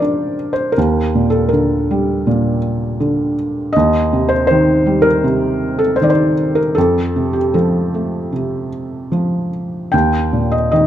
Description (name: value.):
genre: classical, lyrical solo piano.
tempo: 74-82 BPM.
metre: 4/4.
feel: rubato.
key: unclear.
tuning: A4 = 440 Hz.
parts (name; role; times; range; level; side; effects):
felt-muted upright piano; solo; 0.0-10.9 s; Eb2 to G5; -14 LUFS; equal; none.
room: moderate recital hall reverb, RT60 1.6 s.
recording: dark, warm production.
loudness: -14 LUFS.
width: side -11 dB against mid.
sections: 0.0-10.9 A section.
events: none.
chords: 0.0 Bb; 0.8 Ebmaj7; 3.7 Cm/Eb; 6.8 F; 9.9 Eb.